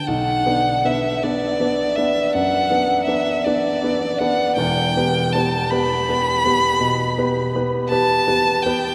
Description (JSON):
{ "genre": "classical, romantic duo for violin and grand piano", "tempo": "54 BPM (dotted quarters)", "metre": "12/8", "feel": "rubato", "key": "unclear", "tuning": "A4 = 441 Hz", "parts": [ { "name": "rich violin", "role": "melody", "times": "0.0-8.9 s", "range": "D5 to B5", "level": "-22 LUFS", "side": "equal", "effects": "none" }, { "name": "warm baby grand piano", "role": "accompaniment", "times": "0.0-8.9 s", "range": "E1 to B4", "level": "-22 LUFS", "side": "equal", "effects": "none" } ], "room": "wet cathedral reverb, RT60 6.0 s", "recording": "none", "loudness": "-19 LUFS", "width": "mono", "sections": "0.1-8.9 A section", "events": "none", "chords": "0.1 Bm; 4.6 Em", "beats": "| 0.08 1.23 2.35 3.46 | 4.59 5.72 6.81 7.90" }